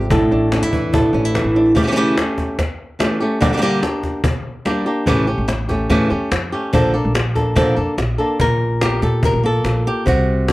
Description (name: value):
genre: flamenco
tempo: 145 BPM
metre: 4/4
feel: straight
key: A phrygian dominant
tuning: A4 = 439 Hz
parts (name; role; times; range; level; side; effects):
- flamenco guitar; melody; 0.0-10.5 s; A2 to Bb4; -17 LUFS; equal; none
- flamenco guitar; stabs; 0.0-1.8 s; D3 to E4; -24 LUFS; right 2 dB; none
- upright bass; bass; 0.0-1.7, 5.1-10.5 s; A1 to Bb2; -20 LUFS; equal; none
- cajon; percussion; 0.1-10.5 s; none; -21 LUFS; left 1 dB; none
room: light reverb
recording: dry, close 1970s-style studio recording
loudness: -15 LUFS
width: side -18 dB against mid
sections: 0.0-1.8 A section; 1.8-8.4 B section; 8.4-10.5 C section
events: nylon-string guitar solo 0.0-1.8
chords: 0.1 Asus4; 1.8 A7; 3.4 Gm; 5.1 A7; 6.7 Bbmaj7; 8.4 Bb5